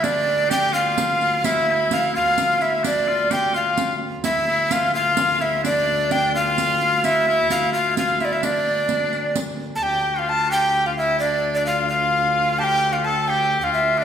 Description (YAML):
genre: medieval dance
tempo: 86 BPM (dotted quarters)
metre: 6/8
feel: straight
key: D minor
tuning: A4 = 439 Hz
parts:
  - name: breathy tenor recorder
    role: melody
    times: 0.0-14.0 s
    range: D5 to A5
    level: -20 LUFS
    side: right 1 dB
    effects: none
  - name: edgy shawm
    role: second line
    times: 0.0-14.0 s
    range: D4 to A4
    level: -22 LUFS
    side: left 4 dB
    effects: none
  - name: rich viola da gamba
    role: drone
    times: 0.0-14.0 s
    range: D2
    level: -29 LUFS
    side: left 1 dB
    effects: none
  - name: riq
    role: percussion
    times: 0.0-9.6 s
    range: none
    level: -29 LUFS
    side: right 4 dB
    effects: none
room: wet recital hall reverb, RT60 1.8 s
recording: heard from further back in the room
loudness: -18 LUFS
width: side -8 dB against mid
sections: 0.0-9.8 A section; 9.8-14.0 B section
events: none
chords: none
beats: | 0.04 0.74 | 1.44 2.14 | 2.85 3.54 | 4.24 4.94 | 5.64 6.34 | 7.04 7.73 | 8.43 9.13 | 9.82 10.52 | 11.21 11.90 | 12.60 13.29 | 13.98